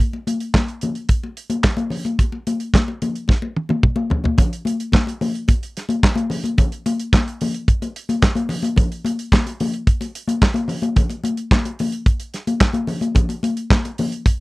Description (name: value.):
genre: disco.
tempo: 109 BPM.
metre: 4/4.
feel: straight.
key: none.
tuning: none.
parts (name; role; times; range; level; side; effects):
congas; percussion; 0.1-14.1 s; none; -22 LUFS; left 2 dB; none.
damped 70s drum kit; drums; 0.3-14.4 s; handclaps, hi-hat, kick drum, snare drum, toms; -17 LUFS; equal; none.
room: little or no reverb.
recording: dry, close 1970s-style studio recording.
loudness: -17 LUFS.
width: side -21 dB against mid.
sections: 0.0-4.4 A section; 4.4-14.4 B section.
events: drum fill 3.3-4.4.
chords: none.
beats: | 0.00 0.54 1.09 1.64 | 2.19 2.74 3.29 3.84 | 4.38 4.93 5.48 6.03 | 6.58 7.13 7.67 8.22 | 8.77 9.32 9.87 10.42 | 10.97 11.51 12.06 12.61 | 13.16 13.71 14.26.